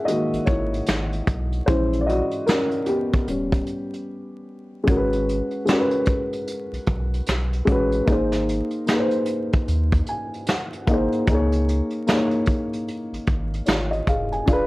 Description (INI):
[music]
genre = lo-fi hip hop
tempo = 75 BPM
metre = 4/4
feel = swing 61% on 16ths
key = G# minor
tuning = A4 = 440 Hz
[part]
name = dark upright piano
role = accompaniment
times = 0.0-14.7 s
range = D#3 to G#5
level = -23 LUFS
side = left 1 dB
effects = cassette tape
[part]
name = vintage brush drum kit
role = drums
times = 0.1-14.7 s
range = hi-hat, kick drum, snare drum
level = -23 LUFS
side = equal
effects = none
[part]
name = warm sub bass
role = bass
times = 0.3-14.7 s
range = D#1 to D#2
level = -25 LUFS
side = equal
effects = none
[part]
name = tambourine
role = percussion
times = 0.9-13.9 s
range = none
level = -46 LUFS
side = right 4 dB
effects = none
[sound]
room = moderate studio reverb, RT60 0.6 s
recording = worn, warbling old tape, cassette tape, vinyl crackle, warbly pitch drift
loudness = -20 LUFS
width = side -20 dB against mid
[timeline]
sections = 0.0-4.9 A section; 4.9-14.7 B section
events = upright piano solo 0.0-4.9; break 4.1-4.9; upright piano fill 9.7-11.3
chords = 0.0 F#69; 1.7 A#m7b5; 3.3 D#aug7; 4.9 G#m9; 8.1 G#add9; 11.3 C#6